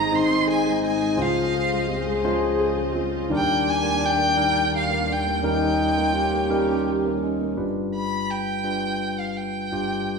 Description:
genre	acoustic folk-pop ballad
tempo	56 BPM (dotted quarters)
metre	6/8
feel	straight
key	unclear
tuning	A4 = 440 Hz
part	rich violin	melody	0.0-10.2 s	F5 to C6	-24 LUFS	equal	none
part	mellow French horn	second line	0.0-7.5 s	D4 to Ab4	-26 LUFS	left 2 dB	none
part	barky tine electric piano	accompaniment	0.0-10.2 s	G1 to C5	-26 LUFS	left 2 dB	overdrive
part	dark chamber string section	sustained chords	0.0-7.5 s	Db2 to Eb5	-33 LUFS	right 2 dB	none
part	felt-muted upright piano	arpeggios	0.0-7.6 s	Eb3 to Ab4	-29 LUFS	right 4 dB	none
room	wet large studio reverb, RT60 1.4 s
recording	band playing live in one room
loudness	-20 LUFS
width	side -4 dB against mid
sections	0.0-7.6 A section; 7.6-10.2 B section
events	none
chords	0.0 Ab; 1.2 Dbmaj7; 3.3 Ebmaj7; 5.4 Eb7; 7.6 G7

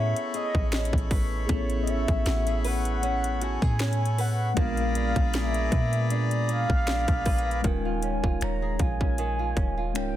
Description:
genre	contemporary R&B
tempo	78 BPM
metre	4/4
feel	swing 54% on 16ths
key	unclear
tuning	A4 = 440 Hz
part	mellow horn-like synth lead	melody	0.0-10.2 s	C#5 to Bb5	-32 LUFS	equal	chorus, ping-pong delay
part	mellow tine electric piano	accompaniment	0.0-10.2 s	Ab3 to Bb4	-33 LUFS	left 3 dB	medium stereo tremolo
part	accordion	sustained chords	0.0-7.6 s	A3 to B5	-35 LUFS	left 3 dB	none
part	flamenco guitar	arpeggios	0.0-10.2 s	Eb3 to B4	-36 LUFS	right 6 dB	ping-pong delay
part	clean 808-style bass	bass	0.0-10.2 s	Db1 to Bb2	-28 LUFS	equal	none
part	trap drum kit	drums	0.2-10.1 s	finger snaps, hi-hat, kick drum, snare drum	-27 LUFS	equal	none
room	digital ambience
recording	dense, heavily limited modern master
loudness	-24 LUFS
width	side -12 dB against mid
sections	0.0-7.6 A section; 7.6-10.2 B section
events	none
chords	0.0 Amaj9; 4.6 Bb7b9; 7.6 Eb9sus4

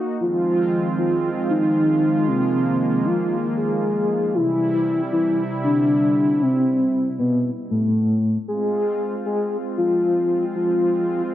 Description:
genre	synthwave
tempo	116 BPM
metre	4/4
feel	straight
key	unclear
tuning	A4 = 439 Hz
part	brassy analog pad	sustained chords	0.0-11.3 s	C3 to Gb4	-24 LUFS	right 1 dB	chorus
part	soft octave-layered synth lead	melody	0.2-11.2 s	A3 to Ab4	-19 LUFS	equal	chorus, tremolo, digital delay
room	moderate lush hall reverb, RT60 2.3 s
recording	none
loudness	-18 LUFS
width	side -12 dB against mid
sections	0.0-8.5 A section; 8.5-11.3 B section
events	none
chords	0.2 Fm7; 4.3 C; 8.5 Fm

